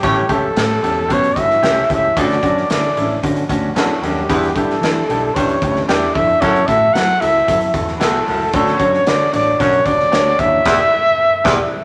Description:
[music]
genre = uptempo 1960s-style soul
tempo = 113 BPM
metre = 4/4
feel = straight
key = unclear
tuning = A4 = 440 Hz
[part]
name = breathy trumpet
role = melody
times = 0.0-11.8 s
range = F#4 to F#5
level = -18 LUFS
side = equal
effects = none
[part]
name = vibraphone with soft mallets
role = second line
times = 0.0-10.7 s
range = F#3 to F#4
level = -32 LUFS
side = equal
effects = none
[part]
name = warm horn section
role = second line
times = 0.0-11.6 s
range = D3 to C#5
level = -26 LUFS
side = equal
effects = none
[part]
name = warm upright piano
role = accompaniment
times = 0.0-11.6 s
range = A3 to D5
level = -22 LUFS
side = equal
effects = none
[part]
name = growling baritone saxophone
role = riff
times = 0.0-11.6 s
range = D2 to B2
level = -24 LUFS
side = equal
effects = none
[part]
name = overdriven picked electric bass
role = bass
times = 0.0-11.6 s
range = E1 to F#3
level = -27 LUFS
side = equal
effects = none
[part]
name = raw garage drum kit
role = drums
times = 0.0-11.6 s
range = crash cymbal, hi-hat, kick drum, snare drum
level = -24 LUFS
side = equal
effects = none
[sound]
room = wet studio reverb, RT60 0.8 s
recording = none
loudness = -15 LUFS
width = mono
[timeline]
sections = 0.0-11.8 A section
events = band accent 10.7-11.8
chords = 0.0 A7; 2.2 Dmaj7; 4.3 Em7; 6.4 F#m7; 8.5 Dmaj7; 10.7 Em7

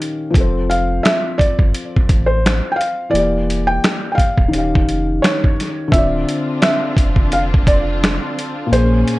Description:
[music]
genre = lo-fi hip hop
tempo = 86 BPM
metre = 4/4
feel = swing 60% on 16ths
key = unclear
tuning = A4 = 440 Hz
[part]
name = felt-muted upright piano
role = accompaniment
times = 0.0-9.2 s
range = Bb2 to F5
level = -21 LUFS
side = left 2 dB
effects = low-pass filter
[part]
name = dusty soul sampler-style drum kit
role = drums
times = 0.0-9.2 s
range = finger snaps, hi-hat, kick drum, snare drum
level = -16 LUFS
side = equal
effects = vintage 12-bit sampler grit
[part]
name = warm sub bass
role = bass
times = 0.3-9.0 s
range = D1 to Bb1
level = -20 LUFS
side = equal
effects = none
[part]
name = felt-muted upright piano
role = melody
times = 0.7-9.2 s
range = C5 to G5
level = -20 LUFS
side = equal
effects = low-pass filter
[part]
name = rich studio string section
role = sustained chords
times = 5.9-9.2 s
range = D3 to Ab4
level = -25 LUFS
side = equal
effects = low-pass filter
[sound]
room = light reverb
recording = none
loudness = -14 LUFS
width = side -18 dB against mid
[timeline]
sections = 0.0-5.9 A section; 5.9-9.2 B section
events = none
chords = 0.3 F; 3.1 Em7b5; 4.5 Eb9; 5.9 Dm9

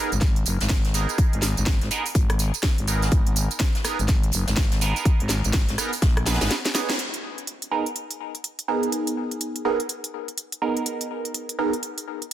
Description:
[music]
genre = bass house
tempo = 124 BPM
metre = 4/4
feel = swing 61% on 16ths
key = G# minor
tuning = A4 = 440 Hz
[part]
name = band-passed chord stab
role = stabs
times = 0.0-11.7 s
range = B3 to C#5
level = -27 LUFS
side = right 3 dB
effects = phaser, sidechain pumping, ping-pong delay
[part]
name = growling FM bass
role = bass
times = 0.1-6.5 s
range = F#1 to A#1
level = -24 LUFS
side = equal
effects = sidechain pumping
[part]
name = house drum kit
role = drums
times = 0.1-12.3 s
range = hi-hat, rim click, snare drum, tambourine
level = -27 LUFS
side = right 1 dB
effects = none
[part]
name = electronic kick drum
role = drums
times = 0.2-6.1 s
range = none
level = -21 LUFS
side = equal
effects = none
[part]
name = jazz brush drum kit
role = drums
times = 0.2-7.0 s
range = hi-hat, snare drum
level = -34 LUFS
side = left 2 dB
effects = high-pass filter on hats, high-pass filter on snare, high-pass filter on room
[sound]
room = light reverb, studio ambience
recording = dense, heavily limited modern master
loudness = -21 LUFS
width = side -12 dB against mid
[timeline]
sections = 0.0-7.0 A section; 7.0-12.3 B section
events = drum fill 6.3-7.0; break 6.5-7.0; band accent 6.9; filter sweep on synth stab 7.0-12.3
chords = 0.0 G#madd9

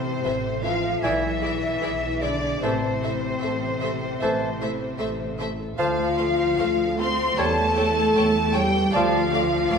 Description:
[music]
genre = classical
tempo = 76 BPM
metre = 4/4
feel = rubato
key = A minor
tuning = A4 = 436 Hz
[part]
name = rich studio violin section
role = melody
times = 0.0-9.8 s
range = C5 to C6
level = -30 LUFS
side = left 2 dB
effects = none
[part]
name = silver concert flute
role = second line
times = 0.0-9.8 s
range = C5 to C6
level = -29 LUFS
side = right 1 dB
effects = none
[part]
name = mellow French horn section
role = sustained chords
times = 0.0-9.8 s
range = C4 to C5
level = -26 LUFS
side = left 4 dB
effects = none
[part]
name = concert harp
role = arpeggios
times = 0.0-9.8 s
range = A2 to D6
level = -34 LUFS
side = left 6 dB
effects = none
[part]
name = rich chamber double bass section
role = bass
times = 0.0-9.8 s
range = A1 to E2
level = -31 LUFS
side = right 4 dB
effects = none
[part]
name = rich symphonic cello section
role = bass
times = 0.0-9.8 s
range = C3 to C4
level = -30 LUFS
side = right 3 dB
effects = none
[part]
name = clear symphonic violin section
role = second line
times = 0.2-9.8 s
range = C5 to G5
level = -34 LUFS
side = left 1 dB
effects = none
[part]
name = rich symphonic viola section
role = accompaniment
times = 0.2-9.8 s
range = E3 to A4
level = -34 LUFS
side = right 2 dB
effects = none
[part]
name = clear oboe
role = second line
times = 1.0-9.2 s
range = G#5 to A5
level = -32 LUFS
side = right 1 dB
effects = none
[part]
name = warm clarinet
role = second line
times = 1.0-9.2 s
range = C5 to D5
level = -32 LUFS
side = equal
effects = none
[part]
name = warm bassoon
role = accompaniment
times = 1.0-9.2 s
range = E3 to G3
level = -32 LUFS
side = right 2 dB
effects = none
[sound]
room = wet scoring stage reverb, RT60 1.9 s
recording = minimal, uncompressed stereo recording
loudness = -21 LUFS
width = side -6 dB against mid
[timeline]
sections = 0.0-9.8 A section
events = none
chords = 0.0 Am; 1.0 E7/B; 2.6 Am; 5.8 Dm7; 7.4 A7/E; 8.9 Dm

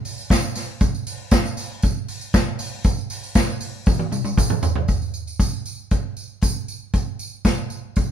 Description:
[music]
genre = disco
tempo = 118 BPM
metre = 4/4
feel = straight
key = none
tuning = none
[part]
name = vintage drum kit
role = drums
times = 0.1-8.1 s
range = hi-hat, kick drum, snare drum, toms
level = -20 LUFS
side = equal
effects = none
[part]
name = tambourine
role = percussion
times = 0.1-8.1 s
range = none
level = -32 LUFS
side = right 3 dB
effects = none
[sound]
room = light reverb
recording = band playing live in one room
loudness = -20 LUFS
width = side -9 dB against mid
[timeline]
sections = 0.0-4.9 A section; 4.9-8.1 B section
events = drum fill 3.9-4.9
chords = none

